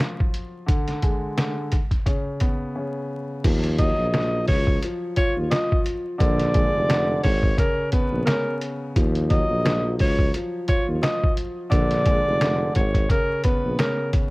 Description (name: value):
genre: hip hop, boom-bap hip-hop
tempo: 87 BPM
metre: 4/4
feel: swing 56% on 16ths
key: Eb minor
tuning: A4 = 442 Hz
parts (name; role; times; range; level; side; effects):
- dark grand piano; accompaniment; 0.0-14.3 s; C#3 to F4; -28 LUFS; left 1 dB; high-pass filter, low-pass filter
- trip hop sampler-style drum kit; drums; 0.0-14.3 s; crash cymbal, hi-hat, kick drum, snare drum; -22 LUFS; equal; cassette tape
- mellow tuba; bass; 3.4-13.8 s; F1 to Eb2; -24 LUFS; equal; none
- breathy tenor saxophone; melody; 3.8-14.1 s; Bb4 to Eb5; -25 LUFS; equal; high-pass filter, low-pass filter, cassette tape
room: little or no reverb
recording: home recording on cassette, vinyl crackle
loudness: -20 LUFS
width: side -23 dB against mid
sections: 0.0-3.4 A section; 3.4-14.3 B section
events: break 0.0-3.4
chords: 0.0 N.C.; 1.7 Bsus2/C#; 3.4 Ebmadd9; 6.2 Bb7; 7.2 Abmadd9; 9.0 Ebmadd9; 11.7 Bb7; 12.8 Abmadd9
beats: 0.00 | 0.69 1.38 2.07 2.76 | 3.45 4.13 4.83 5.51 | 6.20 6.89 7.58 8.27 | 8.96 9.65 10.34 11.03 | 11.72 12.41 13.10 13.79